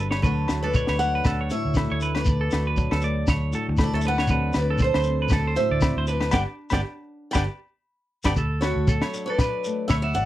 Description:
highlife guitar band; 118 BPM; 4/4; swing 54% on 16ths; D major; A4 = 440 Hz
flamenco guitar; accompaniment; 0.0-10.3 s; G2 to F#4; -32 LUFS; left 3 dB
semi-hollow electric guitar; arpeggios; 0.0-10.3 s; F#4 to E5; -30 LUFS; right 4 dB; slapback echo
vintage muted fingered electric bass; bass; 0.0-10.3 s; G1 to D2; -26 LUFS; equal
compact cocktail drum kit; drums; 0.1-10.0 s; kick drum, snare drum; -24 LUFS; equal
agogo bells; percussion; 0.1-10.0 s; -34 LUFS; left 3 dB
picked steel-string acoustic guitar; melody; 0.2-10.3 s; A4 to G5; -28 LUFS; equal
shekere; percussion; 0.2-10.3 s; -30 LUFS; left 2 dB
little or no reverb; dry, close 1970s-style studio recording; -21 LUFS; side -14 dB against mid
0.0-8.4 A section; 8.4-10.3 B section
band accent 6.3-8.4; drum fill 7.9-8.4
0.2 Dmaj7; 4.3 D7; 6.3 G; 8.4 Dmaj7

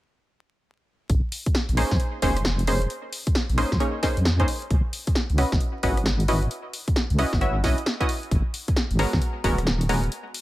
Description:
UK garage, two-step garage; 133 BPM; 4/4; swing 63% on 16ths; Bb minor; A4 = 438 Hz
deep soft wobble bass; bass; 1.1-10.1 s; Eb1 to F2; -23 LUFS; equal; chorus
electronic kick drum; drums; 1.1-9.6 s; -24 LUFS; equal
punchy analog drum machine; drums; 1.1-10.4 s; hi-hat, rim click, snare drum; -29 LUFS; equal; overdrive
punchy chord stab; stabs; 1.8-10.0 s; Ab3 to Fb5; -26 LUFS; equal; chorus, cassette tape, tape echo
little or no reverb; vinyl crackle; -21 LUFS; side -16 dB against mid
1.1-10.4 A section
1.1 Bbm11; 4.5 Dbm11; 8.3 Abm11

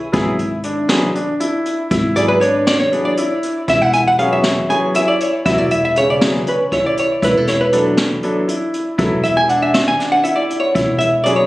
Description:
progressive instrumental, band music in an uneven meter; 238 BPM (eighths); 7/8; straight; A4 = 439 Hz
clear grand piano; accompaniment; 0.1-11.5 s; F#3 to A4; -20 LUFS; left 1 dB
clear concert grand piano; arpeggios; 0.1-11.5 s; C#3 to E4; -20 LUFS; left 1 dB; tape echo
upright bass; bass; 0.1-11.5 s; E1 to G#1; -22 LUFS; equal
jazz brush drum kit; drums; 0.1-11.4 s; hi-hat, kick drum, snare drum; -22 LUFS; equal
archtop guitar, miked and amplified; melody; 2.2-11.4 s; A4 to G#5; -16 LUFS; equal; tape echo
wet studio reverb, RT60 0.8 s; recorded on a phone in the room, club reverb, compression; -14 LUFS; side -18 dB against mid
0.0-11.5 A section
hollow-body jazz guitar solo 0.0-11.5
0.1 G#m7b5; 3.7 C#m/E; 7.2 E7sus4; 10.8 C#m/E

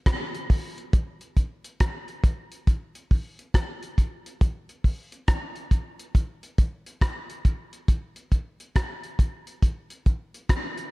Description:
reggae; 69 BPM; 4/4; swing 64% on 16ths
cloth-damped thuddy drum kit; drums; 0.1-10.9 s; hi-hat, kick drum, rim click; -22 LUFS; equal
little or no reverb; dark, warm production; -24 LUFS; side -23 dB against mid
0.0-10.9 A section

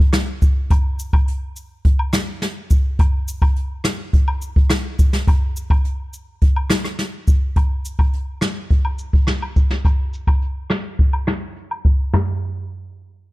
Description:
dancehall; 105 BPM; 4/4; straight
jazz brush drum kit; drums; 0.1-12.3 s; crash cymbal, hi-hat, kick drum, rim click, snare drum, toms; -16 LUFS; equal
cabasa and woodblock; percussion; 0.4-12.4 s; -30 LUFS; left 1 dB
studio ambience; dark, warm production, low-pass filter; -16 LUFS; side -19 dB against mid
0.0-7.6 A section; 7.6-12.1 B section; 12.1-13.3 C section
filter sweep 7.6-12.1

